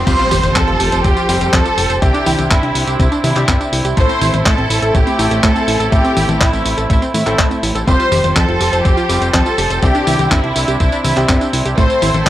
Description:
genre	italo disco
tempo	123 BPM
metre	4/4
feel	straight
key	unclear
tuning	A4 = 440 Hz
part	rich chamber string section	sustained chords	0.0-12.3 s	F3 to C5	-22 LUFS	right 2 dB	none
part	analog pluck	arpeggios	0.0-12.3 s	A3 to C5	-21 LUFS	right 1 dB	chorus, vintage 12-bit sampler grit, analog delay
part	bright baby grand piano	stabs	0.0-12.3 s	A2 to A4	-24 LUFS	left 2 dB	none
part	fat analog bass	bass	0.0-12.3 s	F1 to A2	-19 LUFS	equal	tube saturation
part	riser and impact	sound effects	0.0-2.0 s	none	-24 LUFS	equal	none
part	rich symphonic violin section	melody	0.1-12.3 s	E4 to C6	-18 LUFS	equal	vintage 12-bit sampler grit, analog delay
part	clean 12-bit digital drum machine	drums	0.1-12.3 s	crash cymbal, handclaps, hi-hat, tambourine, toms	-19 LUFS	left 1 dB	none
part	electronic kick drum	drums	0.1-12.3 s	none	-16 LUFS	equal	none
room	little or no reverb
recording	dry, gritty hardware recording, transformer saturation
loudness	-12 LUFS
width	side -13 dB against mid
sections	0.1-12.3 A section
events	impact 0.1-2.0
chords	0.1 Fsus2; 2.0 Cadd9; 4.0 Am; 7.9 Fsus2; 9.8 Cadd9; 11.8 Am

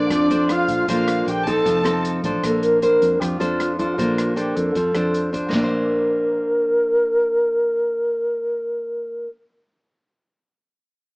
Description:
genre	bossa nova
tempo	155 BPM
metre	4/4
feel	straight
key	Bb major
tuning	A4 = 440 Hz
part	mellow wooden-headed alto flute	melody	0.0-9.3 s	D4 to Bb4	-20 LUFS	equal	none
part	warm chamber violin section	second line	0.0-2.0 s	D5 to A5	-27 LUFS	equal	none
part	nylon-string guitar	accompaniment	0.0-9.4 s	F3 to C5	-23 LUFS	equal	none
part	fingered electric bass	bass	0.0-9.3 s	F1 to F2	-29 LUFS	equal	none
part	open jazz drum kit	drums	0.1-5.6 s	crash cymbal, hi-hat, kick drum, rim click, snare drum	-32 LUFS	equal	none
room	light reverb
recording	small speaker sound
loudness	-18 LUFS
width	side -33 dB against mid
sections	0.0-2.4 A section; 2.4-5.5 B section; 5.5-8.6 C section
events	none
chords	0.0 Bbmaj9; 1.7 F7; 2.4 Bbmaj9; 5.5 Bbadd9

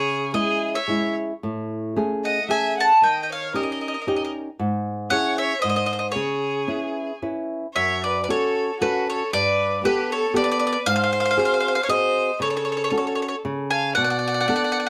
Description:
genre	italian folk, Italian serenade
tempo	115 BPM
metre	3/4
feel	swing 54% on 8ths, rubato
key	C# minor, F# minor from 7.8 s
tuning	A4 = 440 Hz
part	bowl-back mandolin	melody	0.0-14.9 s	B4 to A5	-25 LUFS	equal	none
part	clear violin	second line	0.0-14.9 s	F#4 to F#5	-28 LUFS	equal	none
part	flamenco guitar	accompaniment	0.0-14.9 s	F#2 to B4	-28 LUFS	equal	none
room	light reverb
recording	close, detailed microphones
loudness	-23 LUFS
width	mono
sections	0.0-7.8 A section; 7.8-14.9 B section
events	none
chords	0.0 C#m; 1.4 Amaj7; 3.0 D#7; 4.6 C#m/G#; 5.6 N.C.; 6.2 C#m7; 7.8 F#m; 9.3 Gadd9; 10.9 G#7; 12.4 F#m/C#; 13.5 N.C.; 14.0 Bm7

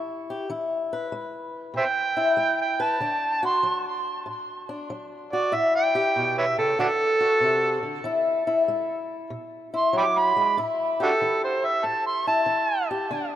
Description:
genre	acoustic country blues, solo or duo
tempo	95 BPM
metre	4/4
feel	swing 67% on 8ths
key	unclear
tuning	A4 = 440 Hz
part	fingerpicked swing-style acoustic guitar	accompaniment	0.0-13.4 s	A2 to B4	-27 LUFS	left 3 dB	none
part	overdriven harmonica	melody	1.8-12.9 s	D4 to D6	-23 LUFS	right 2 dB	tape echo
room	moderate lush hall reverb, RT60 2.8 s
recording	rough home demo mix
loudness	-21 LUFS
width	side -11 dB against mid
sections	0.0-10.6 A section; 10.6-13.4 B section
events	harmonica solo 10.6-13.4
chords	0.0 N.C.; 0.5 E; 3.0 D; 5.5 A7; 6.8 D7; 8.0 E; 10.6 A5

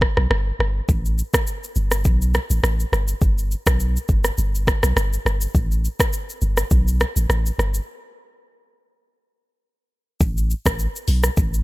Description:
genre	afrobeats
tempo	103 BPM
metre	4/4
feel	swing 55% on 16ths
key	G major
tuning	A4 = 440 Hz
part	punchy sub bass	bass	0.0-11.6 s	G1 to B1	-20 LUFS	equal	none
part	afro-pop drum kit	drums	0.0-11.6 s	hi-hat, kick drum, rim click, shaker	-21 LUFS	equal	none
room	little or no reverb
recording	none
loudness	-18 LUFS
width	side -20 dB against mid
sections	0.0-10.2 A section; 10.2-11.6 B section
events	break 0.0-0.9, 7.9-10.2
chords	none

